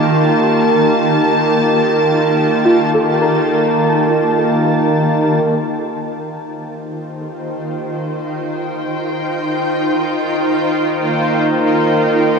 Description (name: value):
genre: ambient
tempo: free time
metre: none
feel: none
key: Eb lydian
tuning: A4 = 436 Hz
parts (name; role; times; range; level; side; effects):
- shimmering ambient pad; sustained chords; 0.0-12.4 s; Eb3 to A5; -15 LUFS; equal; chorus, built-in reverb
- pedal harmonium; drone; 0.0-5.5, 11.0-12.4 s; Eb3 to Bb3; -17 LUFS; right 1 dB; none
- soft round pluck; arpeggios; 2.7-5.2 s; F4 to Bb4; -20 LUFS; equal; ensemble chorus, diffuse ambient delay
room: wet cathedral reverb, RT60 5.6 s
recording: worn, warbling old tape, cassette tape, warbly pitch drift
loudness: -13 LUFS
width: side -5 dB against mid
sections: 0.0-5.5 A section; 5.5-12.4 B section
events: fade-in on ambient pad 5.5-12.4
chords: 0.0 Eb; 5.5 Eb69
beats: free time